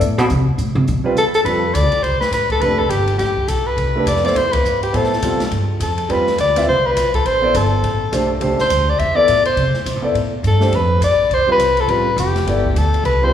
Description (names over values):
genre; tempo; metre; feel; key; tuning
modal jazz; 207 BPM; 4/4; swing 60% on 8ths; F lydian; A4 = 440 Hz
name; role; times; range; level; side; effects
upright bass; bass; 0.0-13.3 s; E1 to C3; -19 LUFS; equal; none
open jazz drum kit; drums; 0.0-13.1 s; hi-hat, kick drum, ride cymbal, snare drum; -27 LUFS; left 2 dB; none
clear concert grand piano; accompaniment; 1.0-13.3 s; G3 to E5; -22 LUFS; right 1 dB; none
warm soprano saxophone; melody; 1.2-13.3 s; G4 to E5; -17 LUFS; left 1 dB; none
room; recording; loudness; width
wet concert hall reverb, RT60 1.9 s; recorded in a church or concert hall, studio reverb; -14 LUFS; side -9 dB against mid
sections
0.0-1.5 A section; 1.5-13.3 B section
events
upright bass solo 0.0-1.5; band accent 4.5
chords
0.0 Fmaj7#11 (rootless); 1.5 Fmaj9#11; 6.1 Am; 10.7 Fadd9(#11)